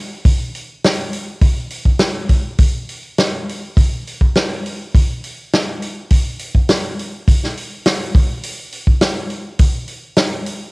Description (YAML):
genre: rock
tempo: 103 BPM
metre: 4/4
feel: straight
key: none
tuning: none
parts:
  - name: vintage drum kit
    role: drums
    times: 0.3-10.6 s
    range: hi-hat, kick drum, snare drum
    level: -14 LUFS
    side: equal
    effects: cassette tape
room: light reverb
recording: home recording on cassette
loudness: -15 LUFS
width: side -28 dB against mid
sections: 0.0-10.7 A section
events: none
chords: none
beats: 0.25 0.84 | 1.43 2.01 2.60 3.18 | 3.77 4.35 4.94 5.52 | 6.11 6.69 7.27 7.86 | 8.44 9.02 9.60 10.19